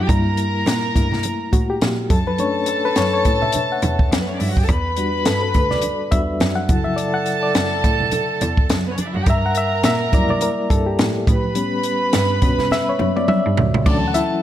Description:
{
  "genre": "lush 1970s-style soul",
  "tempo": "105 BPM",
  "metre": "4/4",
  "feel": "swing 58% on 16ths",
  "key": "D major",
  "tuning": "A4 = 440 Hz",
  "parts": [
    { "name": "warm studio violin section", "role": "second line", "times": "0.0-14.4 s", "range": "B3 to B5", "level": "-23 LUFS", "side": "right 1 dB", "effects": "none" },
    { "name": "reed electric piano", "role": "accompaniment", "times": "0.0-14.4 s", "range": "C#3 to F#5", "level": "-22 LUFS", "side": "left 3 dB", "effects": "overdrive, fast tremolo" },
    { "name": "clear cello", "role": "bass", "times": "0.0-14.1 s", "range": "C#2 to B2", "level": "-23 LUFS", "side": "right 1 dB", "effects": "none" },
    { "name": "compact cocktail drum kit", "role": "drums", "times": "0.1-14.3 s", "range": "crash cymbal, hi-hat, kick drum, snare drum, toms", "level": "-20 LUFS", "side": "equal", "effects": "none" },
    { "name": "congas", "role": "percussion", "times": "0.7-13.7 s", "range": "none", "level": "-30 LUFS", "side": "right 4 dB", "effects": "none" }
  ],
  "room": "light reverb, small room ambience",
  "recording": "none",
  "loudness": "-16 LUFS",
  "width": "side -12 dB against mid",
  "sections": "0.0-13.9 A section",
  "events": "reed electric piano solo 0.0-13.9; drum fill 12.7-13.9",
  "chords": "0.1 Gm6; 2.1 Bm9/F#; 4.7 Em9; 6.7 Dmaj9/F#; 9.3 Gm6; 11.3 A9; 13.9 Dmaj9"
}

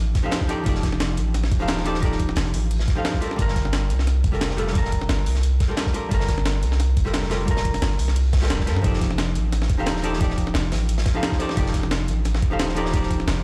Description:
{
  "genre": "liquid drum and bass",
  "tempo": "176 BPM",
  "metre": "4/4",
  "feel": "swing 54% on 16ths",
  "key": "unclear",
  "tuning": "A4 = 438 Hz",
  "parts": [
    { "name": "archtop guitar, miked and amplified", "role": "accompaniment", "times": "0.0-13.4 s", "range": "F3 to F5", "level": "-29 LUFS", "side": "equal", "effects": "tape echo" },
    { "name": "long sustained 808-style bass", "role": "bass", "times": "0.0-13.4 s", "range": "D1 to G2", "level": "-25 LUFS", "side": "equal", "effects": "none" },
    { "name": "crunchy breakbeat drum kit", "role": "drums", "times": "0.1-13.4 s", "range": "hi-hat, snare drum", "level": "-36 LUFS", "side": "equal", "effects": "high-pass filter on hats, high-pass filter on snare, high-pass filter on room" },
    { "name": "breakbeat sampler-style drum kit", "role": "drums", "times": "0.2-13.3 s", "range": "hi-hat, snare drum", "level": "-31 LUFS", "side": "equal", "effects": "none" },
    { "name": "electronic kick drum", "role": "drums", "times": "0.2-13.2 s", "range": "none", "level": "-25 LUFS", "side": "equal", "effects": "none" }
  ],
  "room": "light reverb, studio ambience",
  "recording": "played on a big sound system in a bare room, stone room reverb",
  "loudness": "-22 LUFS",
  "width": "mono",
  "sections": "0.0-8.8 A section; 8.8-13.4 A section",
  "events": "drop 0.0-8.8, 8.8-13.4; band accent 8.5",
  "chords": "0.0 F13; 3.2 Gm9; 8.8 F13"
}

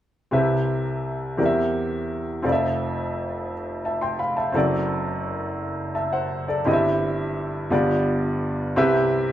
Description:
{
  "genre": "gospel",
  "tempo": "57 BPM (dotted quarters)",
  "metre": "6/8",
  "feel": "straight",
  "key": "C major",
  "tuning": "A4 = 442 Hz",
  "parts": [
    { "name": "clear baby grand piano", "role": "solo", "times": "0.3-9.3 s", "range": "F1 to C6", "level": "-21 LUFS", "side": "equal", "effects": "none" }
  ],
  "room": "wet large studio reverb, RT60 0.8 s",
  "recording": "band playing live in one room",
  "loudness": "-21 LUFS",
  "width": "side -12 dB against mid",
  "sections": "0.3-8.8 A section",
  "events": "none",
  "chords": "0.3 Cmaj7; 1.4 C7/E; 2.4 Fmaj7; 4.5 D7/F#; 6.7 C/G; 7.7 G7; 8.8 Cmaj7"
}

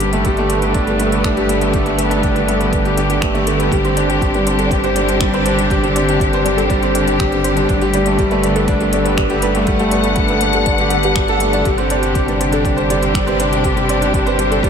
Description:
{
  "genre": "piano and strings electronica",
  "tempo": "121 BPM",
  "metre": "4/4",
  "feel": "straight",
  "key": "G major",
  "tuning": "A4 = 438 Hz",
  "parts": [
    { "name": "muted studio string section", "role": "sustained chords", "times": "0.0-14.7 s", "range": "C3 to F#5", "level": "-18 LUFS", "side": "left 1 dB", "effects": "sidechain pumping" },
    { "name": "felt-muted upright piano", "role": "riff", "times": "0.0-14.7 s", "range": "G3 to C5", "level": "-17 LUFS", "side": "right 1 dB", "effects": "diffuse ambient delay" },
    { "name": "warm sub bass", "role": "bass", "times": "0.0-14.7 s", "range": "G1", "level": "-22 LUFS", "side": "equal", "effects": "sidechain pumping" },
    { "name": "organic electronic drum kit", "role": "drums", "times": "0.0-14.7 s", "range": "finger snaps, hi-hat", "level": "-27 LUFS", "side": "left 1 dB", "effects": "overdrive" },
    { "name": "electronic kick drum", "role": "drums", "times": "0.2-14.7 s", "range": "none", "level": "-20 LUFS", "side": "equal", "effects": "none" },
    { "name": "soft round pluck", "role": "arpeggios", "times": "3.7-14.7 s", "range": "F#4 to D5", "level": "-23 LUFS", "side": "right 1 dB", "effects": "chorus, sidechain pumping, diffuse ambient delay" }
  ],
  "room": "moderate huge ambient reverb, RT60 8.4 s",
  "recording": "dreamy mix soaked in reverb",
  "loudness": "-13 LUFS",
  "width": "side -7 dB against mid",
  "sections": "0.0-14.7 A section",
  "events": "none",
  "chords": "0.0 Gadd9; 3.7 Csus2/G; 7.7 Gadd9; 11.7 Csus2/G"
}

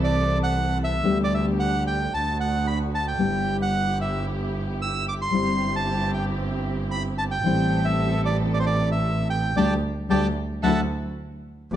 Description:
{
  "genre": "tango",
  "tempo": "113 BPM",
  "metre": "4/4",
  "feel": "rubato",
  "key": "G major",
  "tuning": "A4 = 439 Hz",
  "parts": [
    { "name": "bandoneon", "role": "melody", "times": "0.0-11.8 s", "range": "C5 to E6", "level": "-26 LUFS", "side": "right 2 dB", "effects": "none" },
    { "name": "nylon-string guitar", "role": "accompaniment", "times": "0.0-11.8 s", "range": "C3 to G4", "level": "-25 LUFS", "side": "left 3 dB", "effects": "none" },
    { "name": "muted studio string section", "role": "stabs", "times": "0.0-10.8 s", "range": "A3 to A4", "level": "-33 LUFS", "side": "right 3 dB", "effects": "none" },
    { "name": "clear double bass", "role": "bass", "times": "0.0-11.8 s", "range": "G1 to D2", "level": "-27 LUFS", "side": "right 2 dB", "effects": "none" }
  ],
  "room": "moderate recital hall reverb, RT60 1.7 s",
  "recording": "dark, warm production, nothing above 10.4 kHz",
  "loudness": "-21 LUFS",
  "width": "side -11 dB against mid",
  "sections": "0.0-11.7 A section",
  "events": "band accent 9.6-11.7",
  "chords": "0.0 Am/C; 1.0 G/D; 2.1 D; 3.2 G6; 5.3 C/G; 7.4 Am7; 9.6 Dsus4; 10.6 Dadd9"
}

